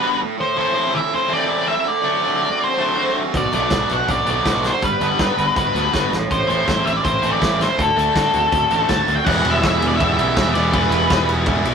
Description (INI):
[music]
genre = indie rock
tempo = 162 BPM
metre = 4/4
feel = straight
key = unclear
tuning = A4 = 442 Hz
[part]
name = octave-fuzz lead guitar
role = melody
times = 0.0-11.3 s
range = A4 to A5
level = -19 LUFS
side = equal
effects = distortion
[part]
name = distorted electric guitar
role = riff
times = 0.0-11.7 s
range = B2 to F#4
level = -24 LUFS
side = left 4 dB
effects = overdrive
[part]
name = raw garage guitar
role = riff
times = 0.0-11.7 s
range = E2 to F#4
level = -22 LUFS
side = right 3 dB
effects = overdrive
[part]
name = fuzz picked electric bass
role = bass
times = 3.3-11.7 s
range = E1 to D3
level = -23 LUFS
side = equal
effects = overdrive
[part]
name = loose indie drum kit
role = drums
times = 3.3-11.7 s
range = crash cymbal, hi-hat, kick drum, ride cymbal, snare drum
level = -23 LUFS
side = equal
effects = none
[part]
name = percussive tonewheel organ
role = sustained chords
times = 9.3-11.7 s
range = E4 to B5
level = -33 LUFS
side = left 1 dB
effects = none
[sound]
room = moderate studio reverb, RT60 0.6 s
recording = rough rehearsal-room recording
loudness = -16 LUFS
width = side -6 dB against mid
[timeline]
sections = 0.0-9.3 A section; 9.3-11.7 B section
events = none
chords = 0.2 Am; 1.9 D7; 3.3 Bm7; 4.8 Gmaj7; 6.1 Am; 7.8 D7; 9.3 Em7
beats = 0.01 | 0.38 0.75 1.12 1.49 | 1.86 2.23 2.60 2.97 | 3.34 3.71 4.08 4.45 | 4.82 5.19 5.56 5.93 | 6.30 6.67 7.04 7.41 | 7.78 8.15 8.52 8.89 | 9.26 9.63 10.00 10.37 | 10.74 11.11 11.48